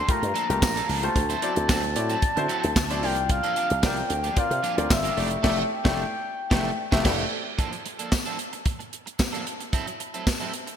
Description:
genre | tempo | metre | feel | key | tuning
early-eighties boogie funk | 112 BPM | 4/4 | straight | unclear | A4 = 439 Hz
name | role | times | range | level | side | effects
expressive synth lead | melody | 0.0-7.3 s | E5 to C6 | -28 LUFS | left 1 dB | chorus, ping-pong delay
electric guitar at the edge of break-up | riff | 0.0-10.7 s | E3 to C5 | -33 LUFS | right 4 dB | analog chorus
clear grand piano | accompaniment | 0.1-7.2 s | A3 to E5 | -30 LUFS | left 3 dB | none
slap bass with an envelope filter | bass | 0.1-7.2 s | F1 to D3 | -29 LUFS | equal | none
tight funk drum kit | drums | 0.1-10.8 s | crash cymbal, handclaps, hi-hat, kick drum, snare drum | -26 LUFS | right 1 dB | none
tambourine | percussion | 0.6-10.4 s | none | -38 LUFS | left 6 dB | none
room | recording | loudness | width
moderate lush hall reverb, RT60 1.9 s, small room reverb | bright 1980s-style digital production | -22 LUFS | side -8 dB against mid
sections
0.0-7.6 A section; 7.6-10.8 B section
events
band accent 5.4-7.6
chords
0.0 Gm9; 1.2 D9; 3.0 C9sus4; 5.2 Fmaj13; 7.6 Bbmaj7/F; 9.7 F#m7b5

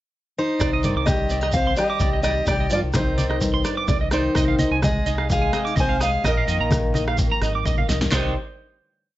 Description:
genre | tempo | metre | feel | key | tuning
highlife guitar band | 128 BPM | 4/4 | straight | C minor | A4 = 440 Hz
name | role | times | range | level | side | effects
fingerpicked steel-string acoustic guitar | melody | 0.4-8.3 s | Eb4 to Ab5 | -24 LUFS | equal | none
nylon-string guitar | accompaniment | 0.6-8.4 s | F2 to G4 | -32 LUFS | left 4 dB | none
electric guitar at the edge of break-up | arpeggios | 0.6-8.3 s | D5 to D6 | -27 LUFS | right 6 dB | analog chorus, slapback echo
deep dub fingered electric bass | bass | 0.6-8.3 s | Ab1 to G2 | -25 LUFS | equal | none
punchy analog drum machine | drums | 0.6-8.2 s | handclaps, hi-hat, kick drum, rim click, snare drum | -26 LUFS | equal | none
congas | percussion | 0.6-8.3 s | none | -27 LUFS | left 1 dB | none
shekere | percussion | 0.6-8.3 s | none | -30 LUFS | right 1 dB | none
warm trombone | second line | 1.1-8.3 s | Eb3 to C4 | -30 LUFS | left 3 dB | none
room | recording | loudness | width
light reverb | nothing above 7.9 kHz | -19 LUFS | side -15 dB against mid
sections
0.0-0.6 pickup bar; 0.6-8.1 A section; 8.1-9.2 final chord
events
drum fill 7.8-8.1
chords
0.0 N.C.; 0.6 Cmadd9; 4.4 Fm7/C; 6.2 Bbsus4; 8.1 Cmadd9

